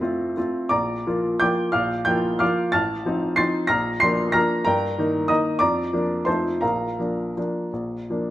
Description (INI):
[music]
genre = classical, piano waltz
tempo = 155-197 BPM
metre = 3/4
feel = rubato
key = Bb major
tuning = A4 = 441 Hz
[part]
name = clear upright piano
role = solo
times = 0.0-8.3 s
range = A1 to C7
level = -20 LUFS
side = equal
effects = none
[sound]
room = moderate recital hall reverb, RT60 1.4 s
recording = close, detailed microphones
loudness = -20 LUFS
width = side -14 dB against mid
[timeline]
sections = 0.0-8.3 A section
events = none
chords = 0.0 F; 0.7 Bb; 2.7 F7/A; 3.7 Bb; 4.7 Eb/G; 5.6 Bb/F; 6.3 F7; 6.6 Bb